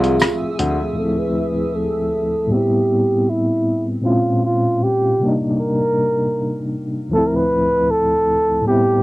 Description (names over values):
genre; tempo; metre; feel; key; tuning
lo-fi hip hop; 78 BPM; 4/4; swing 56% on 16ths; unclear; A4 = 439 Hz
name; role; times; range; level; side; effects
breathy flugelhorn; melody; 0.0-9.0 s; E4 to B4; -18 LUFS; right 1 dB; low-pass filter, cassette tape
mellow tine electric piano; accompaniment; 0.0-9.0 s; D2 to E5; -20 LUFS; left 1 dB; medium tremolo, cassette tape, low-pass filter
granular cloud pad; sustained chords; 0.0-0.9 s; Ab4 to E6; -26 LUFS; right 1 dB; built-in reverb, low-pass filter, cassette tape
dark grand piano; bass; 0.0-0.8 s; C2 to D2; -20 LUFS; left 1 dB; none
dusty soul sampler-style drum kit; drums; 0.0-0.8 s; hi-hat, rim click; -18 LUFS; equal; vintage 12-bit sampler grit
room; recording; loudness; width
moderate booth ambience, RT60 0.2 s; home recording on cassette; -16 LUFS; side -19 dB against mid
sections
1.0-9.0 A section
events
filter sweep 1.0-9.0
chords
0.0 Dm9; 2.5 Am9; 4.0 Bbm9; 5.2 Cm9; 7.1 Dm9